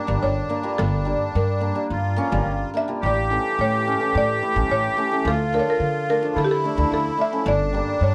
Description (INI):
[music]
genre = klezmer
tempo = 108 BPM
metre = 4/4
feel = straight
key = G dorian sharp4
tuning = A4 = 440 Hz
[part]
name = buzzing marimba with medium mallets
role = melody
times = 0.0-8.1 s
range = G4 to E5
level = -27 LUFS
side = equal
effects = none
[part]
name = accordion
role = second line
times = 0.0-8.1 s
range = D4 to G4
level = -27 LUFS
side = equal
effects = light tremolo tuning
[part]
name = hammered dulcimer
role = accompaniment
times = 0.0-8.1 s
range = E3 to F4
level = -28 LUFS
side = equal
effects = none
[part]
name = upright bass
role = bass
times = 0.1-8.1 s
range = G1 to D3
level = -27 LUFS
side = equal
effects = none
[sound]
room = light reverb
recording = none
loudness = -22 LUFS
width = mono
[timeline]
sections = 0.0-8.1 A section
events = none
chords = 0.0 Gm; 3.0 A; 5.3 Dm; 7.5 Gm